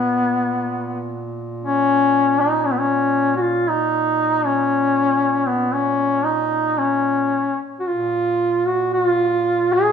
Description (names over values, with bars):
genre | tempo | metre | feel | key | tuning
caucasian folk, Caucasian lament | 56-60 BPM | 3/4 | rubato | Bb phrygian | A4 = 440 Hz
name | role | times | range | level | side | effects
clear duduk | melody | 0.0-9.9 s | Cb4 to Ab4 | -17 LUFS | left 1 dB | none
mellow duduk | drone | 0.0-9.9 s | Bb2 | -29 LUFS | right 2 dB | none
room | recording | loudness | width
moderate scoring stage reverb, RT60 1.7 s | minimal, uncompressed stereo recording | -17 LUFS | side -7 dB against mid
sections
0.0-9.9 A section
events
none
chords
none